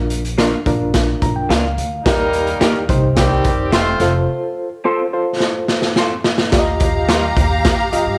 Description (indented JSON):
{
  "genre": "uptempo 1960s-style soul",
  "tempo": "107 BPM",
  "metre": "4/4",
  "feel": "straight",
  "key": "unclear",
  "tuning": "A4 = 442 Hz",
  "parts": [
    { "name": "barky reed electric piano", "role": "accompaniment", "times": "0.0-8.2 s", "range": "D4 to Bb5", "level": "-23 LUFS", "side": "equal", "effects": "overdrive, medium tremolo" },
    { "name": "upright bass", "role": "bass", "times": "0.0-8.2 s", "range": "E1 to G2", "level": "-24 LUFS", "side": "equal", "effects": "none" },
    { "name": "raw garage drum kit", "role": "drums", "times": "0.1-8.1 s", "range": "hi-hat, kick drum, snare drum", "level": "-20 LUFS", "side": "equal", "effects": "none" },
    { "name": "electric guitar through a small old amp", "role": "stabs", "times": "0.4-7.2 s", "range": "G3 to C5", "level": "-26 LUFS", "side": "equal", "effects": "phaser" },
    { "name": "clear horn section", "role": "second line", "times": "2.0-4.1 s", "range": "Eb3 to C5", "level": "-22 LUFS", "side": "equal", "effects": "none" },
    { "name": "rich studio string section", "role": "second line", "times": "6.5-8.2 s", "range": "G4 to Bb5", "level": "-22 LUFS", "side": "equal", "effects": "tape echo" }
  ],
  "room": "light reverb, studio ambience",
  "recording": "none",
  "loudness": "-17 LUFS",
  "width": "mono",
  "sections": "0.0-6.5 A section; 6.5-8.2 B section",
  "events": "reed electric piano fill 0.9-2.1; break 4.3-6.5; drum fill 5.4-6.5",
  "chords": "0.0 Bb; 2.1 Eb; 2.9 Cm; 4.0 F; 6.5 Ebadd9",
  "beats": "0.39 0.94 1.50 | 2.06 2.62 3.17 3.73 | 4.29 4.85 5.41 5.97 | 6.53 7.09 7.65"
}